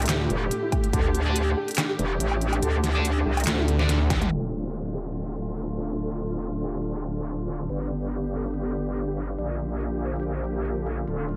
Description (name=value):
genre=heavy wobble dubstep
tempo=142 BPM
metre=4/4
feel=swing 54% on 16ths, half-time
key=D minor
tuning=A4 = 442 Hz
part: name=felt-muted upright piano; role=melody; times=0.0-11.4 s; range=A3 to D5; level=-36 LUFS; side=equal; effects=analog chorus, tape echo
part: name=dark studio string section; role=sustained chords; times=0.0-11.4 s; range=A2 to G4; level=-34 LUFS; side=equal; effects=sidechain pumping, low-pass filter
part: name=metallic wobble bass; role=bass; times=0.0-11.4 s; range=D1 to D2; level=-30 LUFS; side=equal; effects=chorus, overdrive
part: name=dubstep drum kit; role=drums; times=0.0-11.4 s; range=crash cymbal, handclaps, hi-hat, snare drum, toms, woodblock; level=-31 LUFS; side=equal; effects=none
part: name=snarling distorted saw bass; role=bass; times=0.1-0.3, 3.5-4.1 s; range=D2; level=-25 LUFS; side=equal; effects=distortion, overdrive
part: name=electronic kick drum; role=drums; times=0.7-1.0, 4.1-4.2 s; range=none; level=-28 LUFS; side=equal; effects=none
part: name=distorted electric guitar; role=stabs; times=1.3-4.0 s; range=D4 to D5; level=-36 LUFS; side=equal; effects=distortion, tape echo
part: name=downlifter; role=sound effects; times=4.5-7.7 s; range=none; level=-43 LUFS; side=equal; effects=none
room=moderate plate reverb, RT60 2.2 s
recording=dreamy mix soaked in reverb, low-pass filter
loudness=-27 LUFS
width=mono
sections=0.0-4.3 A section; 4.3-11.4 B section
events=drop 0.0-4.3; drum fill 3.5-4.3; band accent 4.1; filter sweep on string section 4.3-11.4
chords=0.0 D5; 4.3 Dm; 7.7 G; 9.4 Bb6